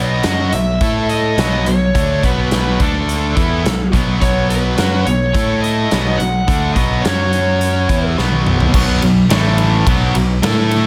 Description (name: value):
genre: hard rock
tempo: 106 BPM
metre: 4/4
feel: straight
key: unclear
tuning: A4 = 440 Hz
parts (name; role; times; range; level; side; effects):
- lead guitar through a small cranked amp; melody; 0.0-8.1 s; A4 to F#5; -23 LUFS; equal; overdrive, slapback echo
- tight distorted guitar; riff; 0.0-10.9 s; A2 to A4; -24 LUFS; equal; distortion
- tight distorted guitar; riff; 0.0-10.9 s; A2 to A4; -23 LUFS; equal; distortion
- modern bright picked electric bass; bass; 0.0-10.9 s; A1 to A2; -20 LUFS; equal; none
- big rock drum kit; drums; 0.2-10.8 s; crash cymbal, hi-hat, kick drum, ride cymbal, snare drum, toms; -21 LUFS; equal; none
room: light reverb, small room ambience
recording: none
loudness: -15 LUFS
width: mono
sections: 0.0-8.7 A section; 8.7-10.9 B section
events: drum fill 8.2-8.7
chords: 0.0 B; 0.8 A5; 1.4 B5; 2.8 D5; 3.4 B5; 5.3 A5; 5.9 B5; 7.0 F#5; 7.9 B5; 9.3 A5; 9.9 B5